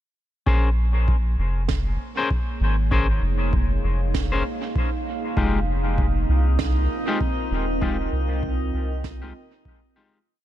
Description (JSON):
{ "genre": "ambient dub", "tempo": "98 BPM", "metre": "4/4", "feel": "swing 59% on 16ths", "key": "Bb dorian", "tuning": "A4 = 441 Hz", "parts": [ { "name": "deep dark ambient pad", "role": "sustained chords", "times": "1.9-10.3 s", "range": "Bb3 to G5", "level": "-30 LUFS", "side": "right 2 dB", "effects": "chorus, built-in reverb" }, { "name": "clean electric guitar", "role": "stabs", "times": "0.5-10.2 s", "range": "Ab3 to C5", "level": "-29 LUFS", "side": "left 4 dB", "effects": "dub echo" }, { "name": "soft dub sub bass", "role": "bass", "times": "0.5-9.3 s", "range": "Eb1 to C2", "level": "-22 LUFS", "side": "equal", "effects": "none" }, { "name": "electronic kick drum", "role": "drums", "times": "0.5-9.8 s", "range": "none", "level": "-26 LUFS", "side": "equal", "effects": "none" }, { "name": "snare drum", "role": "drums", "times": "1.7-9.2 s", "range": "none", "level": "-33 LUFS", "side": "right 8 dB", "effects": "dub echo" }, { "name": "drifting glass-harmonics texture", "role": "texture", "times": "5.8-10.3 s", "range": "Eb4 to Eb5", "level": "-32 LUFS", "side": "right 3 dB", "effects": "chorus, built-in reverb" } ], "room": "little or no reverb", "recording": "none", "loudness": "-20 LUFS", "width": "side -12 dB against mid", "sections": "0.5-10.3 groove", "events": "fade-in on ambient pad 0.5-10.3; fade-out 7.0-10.3", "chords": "0.5 Bbm7; 5.4 Fm9", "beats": "| 0.47 1.08 1.69 2.31 | 2.92 3.53 4.14 4.76 | 5.37 5.98 6.59 7.21 | 7.82 8.43 9.04 9.65" }